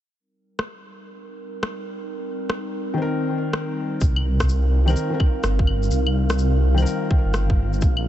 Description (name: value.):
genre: future garage.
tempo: 126 BPM.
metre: 4/4.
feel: swing 64% on 16ths.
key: unclear.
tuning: A4 = 440 Hz.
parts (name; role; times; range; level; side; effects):
warbly tape-like pad; sustained chords; 1.1-8.1 s; F3 to Bb4; -28 LUFS; equal; chorus, built-in reverb, sidechain pumping.
electronic rim click, shaker and claves; drums; 0.6-8.0 s; none; -30 LUFS; left 1 dB; studio reverb.
felt-muted upright piano; accompaniment; 2.9-7.8 s; Eb3 to Bb4; -28 LUFS; left 3 dB; sidechain pumping, digital delay.
swelling detuned saw bass; bass; 4.0-8.1 s; G1 to C2; -20 LUFS; equal; sidechain pumping.
electronic kick drum; drums; 4.0-7.9 s; none; -19 LUFS; equal; studio reverb.
wind-like tuned noise texture; texture; 4.5-8.1 s; F4 to F5; -36 LUFS; right 2 dB; built-in reverb.
room: little or no reverb.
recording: nothing above 8.0 kHz.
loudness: -19 LUFS.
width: side -12 dB against mid.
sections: 0.2-4.0 A section; 4.0-8.1 B section.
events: fade-in on ambient pad 0.2-4.0.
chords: 0.2 Cm7.